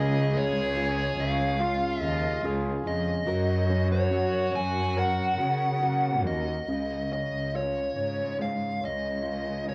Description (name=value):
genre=pop ballad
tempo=71 BPM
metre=4/4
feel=straight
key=unclear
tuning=A4 = 440 Hz
part: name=fuzz lead guitar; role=melody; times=0.0-9.7 s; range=C#5 to G#5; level=-32 LUFS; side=equal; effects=distortion, cassette tape
part: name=muted French horn section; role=second line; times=0.0-6.7 s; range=A#3 to G#4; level=-36 LUFS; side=equal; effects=cassette tape
part: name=warm concert grand piano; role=accompaniment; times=0.0-9.7 s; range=C#3 to A#4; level=-35 LUFS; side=equal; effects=cassette tape
part: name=fingerpicked plugged-in steel-string acoustic guitar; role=arpeggios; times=0.0-6.7 s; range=C#3 to A#4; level=-38 LUFS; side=equal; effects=cassette tape, tape echo
part: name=rich symphonic cello section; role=bass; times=0.0-9.7 s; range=C#2 to C#3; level=-32 LUFS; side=equal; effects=none
room=moderate small room reverb, RT60 0.6 s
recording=home recording on cassette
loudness=-27 LUFS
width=mono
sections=0.0-6.7 A section; 6.7-9.7 B section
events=none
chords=0.0 C#; 3.3 F#; 6.7 C#add9